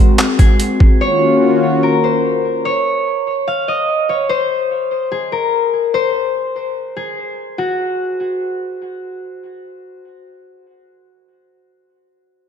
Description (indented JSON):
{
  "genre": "hip hop, atmospheric cloud-rap",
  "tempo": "146 BPM",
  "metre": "4/4",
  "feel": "half-time",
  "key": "Eb dorian",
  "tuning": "A4 = 440 Hz",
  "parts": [
    { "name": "concert harp", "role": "melody", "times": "0.0-10.0 s", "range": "Gb4 to F5", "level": "-17 LUFS", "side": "left 1 dB", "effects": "low-pass filter, tape echo" },
    { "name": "warm analog pad", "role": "sustained chords", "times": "0.0-2.6 s", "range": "Eb3 to Gb4", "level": "-15 LUFS", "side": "left 2 dB", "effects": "chorus, sidechain pumping" },
    { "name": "boom bap sampler-style drum kit", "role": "drums", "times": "0.2-0.9 s", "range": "handclaps, hi-hat, kick drum", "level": "-10 LUFS", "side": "equal", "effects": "overdrive" }
  ],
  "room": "moderate lush hall reverb, RT60 1.7 s, digital ambience",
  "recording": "dreamy mix soaked in reverb",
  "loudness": "-14 LUFS",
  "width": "side -8 dB against mid",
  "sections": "0.0-7.6 A section; 7.6-10.9 B section",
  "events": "none",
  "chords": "0.0 Ab7; 1.0 Ebm7; 4.3 N.C."
}